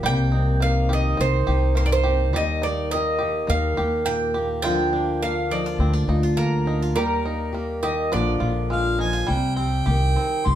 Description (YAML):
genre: acoustic folk duo or small band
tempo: 104 BPM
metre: 4/4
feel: straight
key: Eb major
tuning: A4 = 440 Hz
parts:
  - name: fingerpicked steel-string acoustic guitar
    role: accompaniment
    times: 0.0-10.6 s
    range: Eb2 to G4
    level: -26 LUFS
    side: left 2 dB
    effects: none
  - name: bluegrass banjo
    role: arpeggios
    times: 0.0-10.6 s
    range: D3 to G4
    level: -31 LUFS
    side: right 1 dB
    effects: slapback echo
  - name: upright bass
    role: bass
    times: 0.0-10.6 s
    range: Bb1 to Eb2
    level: -23 LUFS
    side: equal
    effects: none
  - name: bowl-back mandolin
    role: second line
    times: 0.1-9.0 s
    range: Bb4 to G5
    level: -26 LUFS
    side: right 3 dB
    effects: none
  - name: warm harmonica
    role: melody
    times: 8.7-10.6 s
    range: F5 to C6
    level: -25 LUFS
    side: right 2 dB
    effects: plate reverb
room: wet studio ambience, RT60 0.5 s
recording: heard from further back in the room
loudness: -20 LUFS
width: side -11 dB against mid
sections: 0.0-9.3 A section; 9.3-10.6 B section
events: mandolin solo 0.0-9.3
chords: 0.0 Cm7; 2.3 Eb; 4.7 Bb/D; 7.0 Eb; 8.1 Bb7; 9.3 Cm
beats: | 0.04 0.62 1.20 1.77 | 2.35 2.92 3.50 4.08 | 4.66 5.24 5.82 6.39 | 6.97 7.55 8.14 8.72 | 9.30 9.88 10.47